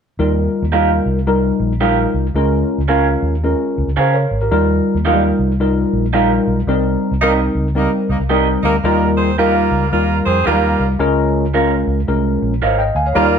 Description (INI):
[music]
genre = soul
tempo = 111 BPM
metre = 4/4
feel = swing 62% on 8ths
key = Eb mixolydian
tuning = A4 = 440 Hz
[part]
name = mellow tine electric piano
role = accompaniment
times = 0.2-13.4 s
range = Gb3 to Ab5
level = -16 LUFS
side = left 2 dB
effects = lush chorus
[part]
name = vintage muted fingered electric bass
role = bass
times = 0.2-13.4 s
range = Ab1 to Db3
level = -19 LUFS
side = equal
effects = none
[part]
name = electric guitar through a small old amp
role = stabs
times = 0.7-12.8 s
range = Db4 to F5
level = -18 LUFS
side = right 6 dB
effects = none
[part]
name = mellow horn section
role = second line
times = 7.2-13.4 s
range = G3 to C5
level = -18 LUFS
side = right 2 dB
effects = none
[sound]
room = light reverb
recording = none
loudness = -13 LUFS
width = side -7 dB against mid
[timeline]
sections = 0.2-8.8 A section; 8.8-13.4 B section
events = band accent 6.7-8.8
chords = 0.2 Ebadd9; 2.4 Db6; 4.5 Ebadd9; 6.7 Cm7; 8.8 Ebadd9; 11.0 Db6